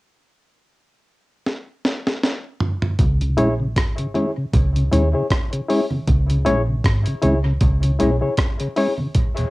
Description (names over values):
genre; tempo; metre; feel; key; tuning
dub reggae; 78 BPM; 4/4; swing 57% on 16ths; C# dorian; A4 = 435 Hz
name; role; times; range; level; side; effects
breakbeat sampler-style drum kit; drums; 1.5-9.5 s; hi-hat, kick drum, rim click, snare drum, toms; -20 LUFS; equal; cassette tape
vintage muted fingered electric bass; bass; 3.0-8.2 s; G#1 to D#2; -20 LUFS; equal; none
congas; percussion; 3.0-9.4 s; none; -28 LUFS; right 2 dB; none
mellow tonewheel organ; accompaniment; 3.2-9.5 s; E2 to E4; -22 LUFS; equal; chorus vibrato, cassette tape
barky reed electric piano; stabs; 3.4-8.9 s; E4 to C#5; -24 LUFS; left 2 dB; overdrive, cassette tape, dub echo
room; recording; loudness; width
light reverb; home recording on cassette; -17 LUFS; side -20 dB against mid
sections
0.0-3.0 A section; 3.0-9.5 B section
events
drum fill 1.5-3.0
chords
0.0 N.C.; 3.0 C#m